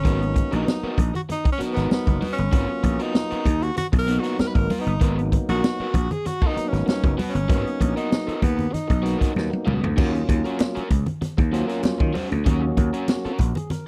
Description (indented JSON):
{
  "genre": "funk",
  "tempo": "97 BPM",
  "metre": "4/4",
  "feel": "straight",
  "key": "unclear",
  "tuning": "A4 = 440 Hz",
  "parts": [
    { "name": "breathy tenor saxophone", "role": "melody", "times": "0.0-9.4 s", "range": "Cb4 to Cb5", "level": "-30 LUFS", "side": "equal", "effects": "none" },
    { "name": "crunchy overdriven guitar", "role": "accompaniment", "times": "0.0-13.7 s", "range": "Cb4 to C5", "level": "-33 LUFS", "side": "equal", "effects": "none" },
    { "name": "tonewheel organ", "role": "stabs", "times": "0.0-13.9 s", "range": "Gb3 to Bb4", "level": "-31 LUFS", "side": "equal", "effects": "overdrive" },
    { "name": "gritty slap bass", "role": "bass", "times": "0.0-13.5 s", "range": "Gb1 to Eb3", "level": "-26 LUFS", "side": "equal", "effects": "overdrive" },
    { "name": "swinging big-band drum kit", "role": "drums", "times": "0.1-13.9 s", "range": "crash cymbal, hi-hat, kick drum, snare drum, toms", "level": "-25 LUFS", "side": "equal", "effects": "none" },
    { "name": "congas", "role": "percussion", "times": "0.1-13.9 s", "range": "none", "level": "-33 LUFS", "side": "equal", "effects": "none" },
    { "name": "group handclap", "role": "percussion", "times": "10.6-13.2 s", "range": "none", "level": "-42 LUFS", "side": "equal", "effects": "none" }
  ],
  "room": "little or no reverb",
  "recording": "dry, close 1970s-style studio recording",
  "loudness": "-22 LUFS",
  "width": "mono",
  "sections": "0.0-10.0 A section; 10.0-13.9 B section",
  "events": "drum fill 9.4-10.0; tonewheel organ fill 13.1-13.9",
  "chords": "0.0 Abm9; 10.0 Ebm7"
}